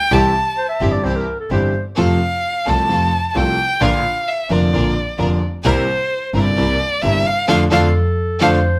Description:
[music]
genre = tango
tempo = 130 BPM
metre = 4/4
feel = rubato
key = F major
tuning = A4 = 441 Hz
[part]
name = rich violin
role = second line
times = 0.0-8.6 s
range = C5 to A5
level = -21 LUFS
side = equal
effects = none
[part]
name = clear concert grand piano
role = accompaniment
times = 0.1-8.6 s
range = F1 to G4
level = -21 LUFS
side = equal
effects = none
[part]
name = clear studio string section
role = stabs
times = 0.1-8.6 s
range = C4 to Bb4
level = -27 LUFS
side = equal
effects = none
[part]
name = clear double bass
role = bass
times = 0.1-8.6 s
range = F1 to F2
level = -23 LUFS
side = equal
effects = none
[part]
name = mellow clarinet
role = second line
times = 0.6-1.8, 7.7-8.8 s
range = A4 to E5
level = -24 LUFS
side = equal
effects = none
[sound]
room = light reverb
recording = close, detailed microphones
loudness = -17 LUFS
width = mono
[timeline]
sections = 0.0-8.8 A section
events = violin solo 0.0-8.8; band accent 7.5-8.8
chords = 0.1 C; 2.0 F; 3.8 Bb; 5.7 C7; 7.5 F6

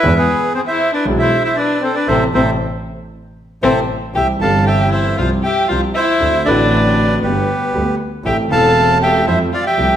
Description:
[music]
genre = tango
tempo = 117 BPM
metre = 4/4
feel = rubato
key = A minor, C major from 4.1 s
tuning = A4 = 441 Hz
[part]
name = bandoneon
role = melody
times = 0.0-10.0 s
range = G4 to A5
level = -16 LUFS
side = right 2 dB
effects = none
[part]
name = dark violin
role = second line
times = 0.0-10.0 s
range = B3 to A4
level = -19 LUFS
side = left 4 dB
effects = none
[part]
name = warm concert grand piano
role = accompaniment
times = 0.0-10.0 s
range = E1 to A4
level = -20 LUFS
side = right 1 dB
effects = none
[part]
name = clear double bass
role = bass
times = 0.0-10.0 s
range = E1 to F2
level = -20 LUFS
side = right 1 dB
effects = none
[sound]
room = wet recital hall reverb, RT60 1.5 s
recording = recorded in a church or concert hall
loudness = -13 LUFS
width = side -10 dB against mid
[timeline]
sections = 0.0-4.1 A section; 4.1-10.0 B section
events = band accent 2.1-4.1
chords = 0.0 E; 2.1 Am; 4.1 C; 5.2 Fsus2/C; 6.2 D7; 7.2 G; 8.2 Am; 9.3 F

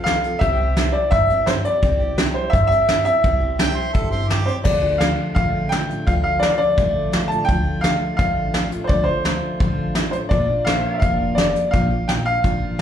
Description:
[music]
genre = honky-tonk and classic country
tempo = 170 BPM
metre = 4/4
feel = straight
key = D minor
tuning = A4 = 440 Hz
[part]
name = bright upright piano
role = melody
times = 0.0-12.8 s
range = C5 to A5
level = -20 LUFS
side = equal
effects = slapback echo
[part]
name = picked steel-string acoustic guitar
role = accompaniment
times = 0.0-12.8 s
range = Bb2 to A4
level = -25 LUFS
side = left 2 dB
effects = slapback echo
[part]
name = pedal steel guitar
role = sustained chords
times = 0.0-4.6, 10.7-12.8 s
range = G4 to F5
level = -33 LUFS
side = equal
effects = lush chorus
[part]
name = upright bass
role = bass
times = 0.0-12.7 s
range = F1 to G2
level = -24 LUFS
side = equal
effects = none
[part]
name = soft brush drum kit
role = drums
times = 0.1-12.8 s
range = crash cymbal, hi-hat, kick drum, snare drum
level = -21 LUFS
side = equal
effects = none
[part]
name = warm harmonica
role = second line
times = 3.6-4.6 s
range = G4 to G5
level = -27 LUFS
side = right 4 dB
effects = slapback echo
[sound]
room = moderate club reverb, RT60 0.6 s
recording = live gig heard through the venue's PA, club reverb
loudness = -17 LUFS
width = side -9 dB against mid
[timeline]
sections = 0.0-4.7 A section; 4.7-12.8 B section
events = none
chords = 0.4 C; 4.7 Dm; 10.3 Bb

